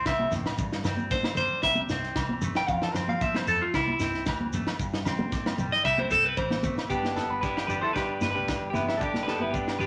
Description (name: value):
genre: highlife guitar band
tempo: 114 BPM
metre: 4/4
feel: straight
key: G mixolydian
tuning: A4 = 439 Hz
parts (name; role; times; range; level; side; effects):
- clean electric guitar; accompaniment; 0.0-9.9 s; F2 to G4; -38 LUFS; equal; none
- clean electric guitar; arpeggios; 0.0-9.9 s; E4 to G5; -29 LUFS; equal; phaser
- fingered electric bass; bass; 0.0-9.9 s; G1 to F3; -41 LUFS; equal; none
- tight funk drum kit; drums; 0.1-9.8 s; kick drum, snare drum; -35 LUFS; equal; none
- agogo bells; percussion; 0.1-9.8 s; none; -42 LUFS; equal; none
- shekere; percussion; 0.1-9.9 s; none; -41 LUFS; equal; none
- congas; percussion; 0.2-9.9 s; none; -36 LUFS; equal; none
- clean electric guitar; melody; 6.9-9.9 s; D4 to C5; -33 LUFS; equal; none
- warm alto saxophone; second line; 6.9-9.9 s; B3 to E4; -38 LUFS; equal; none
room: wet studio reverb, RT60 0.8 s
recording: none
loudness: -27 LUFS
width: mono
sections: 0.0-6.9 A section; 6.9-9.9 B section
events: clean electric guitar solo 0.0-6.9; drum fill 5.8-6.9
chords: 0.0 C6; 0.6 Gsus4; 1.6 C6; 2.7 F; 3.7 C6; 4.8 Gsus4; 5.8 C6; 6.9 Gadd9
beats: 0.06 | 0.59 1.11 1.64 2.16 | 2.69 3.22 3.74 4.27 | 4.79 5.32 5.85 6.37 | 6.90 7.43 7.96 8.49 | 9.02 9.54